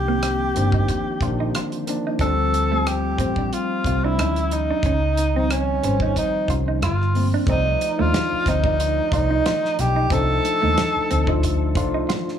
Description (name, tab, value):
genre	R&B, neo-soul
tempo	91 BPM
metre	4/4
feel	swing 54% on 16ths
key	C dorian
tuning	A4 = 440 Hz
part	breathy tenor saxophone	melody	0.0-11.4 s	Db4 to A4	-23 LUFS	equal	plate reverb, tape echo
part	tine electric piano	accompaniment	0.0-12.4 s	D3 to D5	-26 LUFS	left 4 dB	medium stereo tremolo, plate reverb
part	vintage muted fingered electric bass	bass	0.0-12.0 s	G1 to Eb2	-22 LUFS	equal	none
part	clean electric guitar	second line	0.1-12.2 s	A3 to F4	-29 LUFS	right 10 dB	spring reverb, plate reverb
part	damped 70s drum kit	drums	0.2-12.4 s	hi-hat, kick drum, rim click, snare drum	-26 LUFS	right 1 dB	none
room	light reverb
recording	small room ambience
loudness	-18 LUFS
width	side -9 dB against mid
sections	0.0-7.5 A section; 7.5-12.4 B section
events	none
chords	0.0 Cm9; 2.2 Dm7; 4.2 Dmaj9; 4.8 Dbmaj9; 6.8 G7sus4; 7.5 Cm69